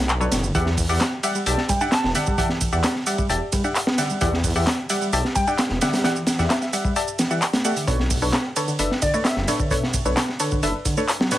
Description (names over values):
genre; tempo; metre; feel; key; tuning
breakbeat, breaks; 131 BPM; 4/4; straight; unclear; A4 = 445 Hz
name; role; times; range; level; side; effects
reed electric piano; riff; 0.0-11.4 s; A2 to D4; -28 LUFS; equal; overdrive, fast tremolo, digital delay
detuned saw bass; bass; 0.0-10.7 s; E1 to E2; -24 LUFS; equal; none
house drum kit; drums; 0.1-11.4 s; handclaps, ride cymbal, shaker; -27 LUFS; right 2 dB; none
filtered dub chord stab; stabs; 0.2-11.4 s; D4 to A5; -25 LUFS; left 1 dB; chorus, digital delay
crunchy breakbeat drum kit; drums; 0.3-11.4 s; hi-hat, kick drum, snare drum; -24 LUFS; equal; none
glassy wavetable pluck; melody; 1.7-2.6, 5.4-9.9 s; D5 to A5; -28 LUFS; equal; chorus, phaser, old record sound, digital delay
room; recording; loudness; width
light reverb; vinyl crackle; -19 LUFS; side -13 dB against mid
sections
0.0-11.4 A section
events
none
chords
0.0 Bm9; 0.5 Em9; 7.9 Bm9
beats
0.09 | 0.55 1.01 1.47 1.92 | 2.38 2.84 3.30 3.75 | 4.21 4.67 5.13 5.59 | 6.04 6.50 6.96 7.42 | 7.88 8.34 8.79 9.25 | 9.71 10.17 10.62 11.08